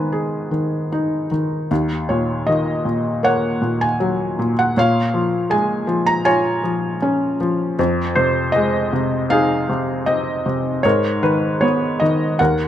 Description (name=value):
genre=classical, lyrical solo piano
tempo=78 BPM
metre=4/4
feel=rubato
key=Eb minor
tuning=A4 = 440 Hz
part: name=felt-muted upright piano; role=solo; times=0.0-12.7 s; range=Eb2 to Bb5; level=-16 LUFS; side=equal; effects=none
room=light reverb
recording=close, detailed microphones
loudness=-16 LUFS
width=side -11 dB against mid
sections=0.0-12.7 A section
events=none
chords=0.0 Abm; 1.7 Ebm7; 4.8 Bbm7; 7.8 Fm7; 10.8 Abmadd9